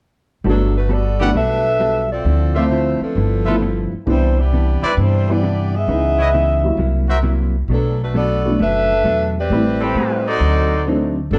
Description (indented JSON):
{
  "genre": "jazz",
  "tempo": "132 BPM",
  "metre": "4/4",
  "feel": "swing 67% on 8ths",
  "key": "G major",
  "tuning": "A4 = 439 Hz",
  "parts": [
    { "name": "hollow-body jazz guitar", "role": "accompaniment", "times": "0.4-11.4 s", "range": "G2 to B4", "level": "-26 LUFS", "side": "equal", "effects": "none" },
    { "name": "warm upright piano", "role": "accompaniment", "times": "0.4-11.1 s", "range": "E3 to E5", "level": "-23 LUFS", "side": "equal", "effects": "none" },
    { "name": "upright bass", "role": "bass", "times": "0.4-11.4 s", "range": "F#1 to A2", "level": "-21 LUFS", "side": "equal", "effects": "none" },
    { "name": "mellow saxophone section", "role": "melody", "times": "0.5-11.4 s", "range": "F3 to E5", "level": "-22 LUFS", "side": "equal", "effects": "none" },
    { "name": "warm trumpet section", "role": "stabs", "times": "1.2-10.8 s", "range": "C4 to B5", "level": "-24 LUFS", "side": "equal", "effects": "none" }
  ],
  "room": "light reverb",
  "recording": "dark, warm production",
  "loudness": "-17 LUFS",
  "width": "mono",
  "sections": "0.4-11.4 A section",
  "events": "none",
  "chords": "0.4 Gmaj9; 2.3 Dm9; 3.2 G13; 4.1 Cmaj9; 5.9 C#m9; 6.8 C7#11; 7.7 Bm7; 9.5 Am9; 10.4 D7b9",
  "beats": "| 0.44 0.90 1.35 1.80 | 2.25 2.71 3.16 3.61 | 4.07 4.52 4.97 5.42 | 5.88 6.33 6.78 7.24 | 7.69 8.14 8.60 9.05 | 9.50 9.95 10.41 10.86 | 11.31"
}